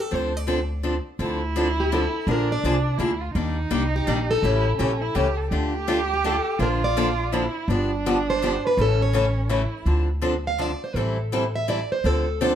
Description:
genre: acoustic string swing (jazz manouche).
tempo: 166 BPM.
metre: 3/4.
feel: swing 60% on 8ths.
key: D minor.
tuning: A4 = 438 Hz.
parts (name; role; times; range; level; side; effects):
picked plugged-in steel-string acoustic guitar; melody; 0.0-12.6 s; G4 to F5; -26 LUFS; equal; none.
picked steel-string acoustic guitar; accompaniment; 0.1-12.5 s; C#3 to A4; -25 LUFS; left 2 dB; none.
upright bass; bass; 0.1-12.6 s; G1 to Eb2; -25 LUFS; equal; none.
warm violin; second line; 1.2-9.9 s; C#4 to A4; -27 LUFS; right 4 dB; none.
room: light reverb.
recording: none.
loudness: -21 LUFS.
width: side -9 dB against mid.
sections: 0.0-1.2 A section; 1.2-9.9 B section; 9.9-12.6 C section.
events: steel-string acoustic guitar solo 9.9-12.6.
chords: 0.1 Dm7; 2.3 Bb7; 3.4 Ebmaj7; 4.4 A7; 5.5 Dm; 6.6 Bbmaj7; 7.7 G7; 8.8 A; 9.9 Dm7; 11.0 Am7; 12.0 Dm7.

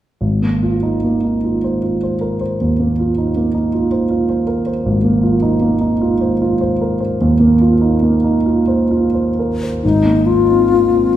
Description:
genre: classical, impressionist duo for alto flute and grand piano.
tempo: 42-54 BPM (dotted quarters).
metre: 12/8.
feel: rubato.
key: Ab major.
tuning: A4 = 442 Hz.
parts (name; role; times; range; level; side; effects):
dark concert grand piano; accompaniment; 0.2-11.2 s; Ab1 to C5; -14 LUFS; right 1 dB; none.
alto flute; melody; 9.8-11.2 s; Eb4 to F4; -13 LUFS; left 8 dB; none.
room: wet recital hall reverb, RT60 1.5 s.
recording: recorded in a church or concert hall.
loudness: -13 LUFS.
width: side -12 dB against mid.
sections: 0.2-9.8 A section; 9.8-11.2 B section.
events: none.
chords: 0.2 Ab69.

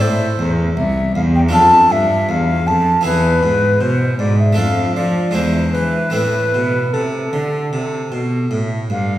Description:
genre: classical, baroque-style sonata movement with continuo.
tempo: 78 BPM.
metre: 4/4.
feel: straight.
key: A minor.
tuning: A4 = 442 Hz.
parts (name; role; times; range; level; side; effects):
bright baroque flute; melody; 0.0-9.2 s; A4 to A5; -17 LUFS; left 1 dB; none.
harpsichord; accompaniment; 0.0-9.2 s; C2 to A4; -19 LUFS; equal; none.
rich cello; bass; 0.0-9.2 s; C2 to F3; -19 LUFS; right 1 dB; none.
room: wet recital hall reverb, RT60 1.7 s.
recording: heard from further back in the room.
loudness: -13 LUFS.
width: side -14 dB against mid.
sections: 0.0-9.2 A section.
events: none.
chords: 0.0 Am; 1.5 Dm/F; 3.1 E; 4.6 Dm/F; 5.4 E7; 6.1 Am.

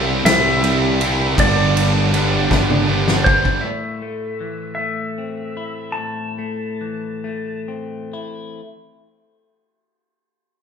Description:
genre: post-rock.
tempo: 42-53 BPM (dotted quarters).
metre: 6/8.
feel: straight.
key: A minor.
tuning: A4 = 442 Hz.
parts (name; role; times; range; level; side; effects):
clean lap steel guitar; melody; 0.0-7.6 s; C5 to A5; -23 LUFS; equal; none.
thick fuzz guitar; riff; 0.0-3.6 s; G2 to E4; -18 LUFS; right 1 dB; distortion.
fuzz fingered electric bass; bass; 0.0-3.6 s; G1 to C2; -22 LUFS; equal; overdrive.
loose indie drum kit; drums; 0.3-3.6 s; kick drum, ride cymbal, snare drum, toms; -20 LUFS; equal; none.
semi-hollow electric guitar; arpeggios; 3.6-8.6 s; A2 to E4; -28 LUFS; left 3 dB; spring reverb.
room: moderate large studio reverb, RT60 1.1 s.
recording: band playing live in one room.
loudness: -16 LUFS.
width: side -7 dB against mid.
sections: 0.0-3.6 A section; 3.6-8.6 B section.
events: drum fill 2.5-3.6; slowing down 3.6-8.6.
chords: 0.0 C; 1.4 G5; 3.6 Am.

